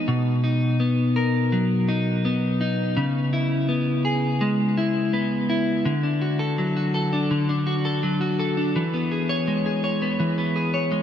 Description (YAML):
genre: dream pop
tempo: 83 BPM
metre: 4/4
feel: straight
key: unclear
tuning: A4 = 441 Hz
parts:
  - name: clean electric guitar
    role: solo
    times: 0.0-11.0 s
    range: B2 to C#5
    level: -20 LUFS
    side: left 1 dB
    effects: lush chorus, ping-pong delay
room: moderate huge ambient reverb, RT60 5.2 s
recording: none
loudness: -20 LUFS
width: side -9 dB against mid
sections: 0.0-5.9 A section; 5.9-11.0 B section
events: none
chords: 0.1 Bmaj7; 3.0 C#m7; 5.9 D; 8.7 E6